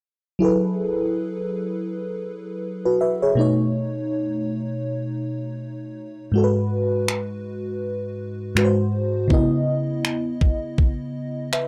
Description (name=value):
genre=contemporary R&B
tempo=81 BPM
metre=4/4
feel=swing 58% on 16ths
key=F# dorian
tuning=A4 = 439 Hz
part: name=FM electric piano with soft pad layer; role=accompaniment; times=0.4-11.7 s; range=G#2 to E5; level=-24 LUFS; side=equal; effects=chorus
part: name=gated 80s digital drum machine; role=drums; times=7.1-11.7 s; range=finger snaps, kick drum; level=-22 LUFS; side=equal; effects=overdrive
room=little or no reverb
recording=dry, gritty hardware recording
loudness=-23 LUFS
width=mono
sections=0.4-11.7 A section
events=none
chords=0.4 F#m11; 3.4 B9; 6.3 G#m7; 8.6 G#7; 9.3 C#m9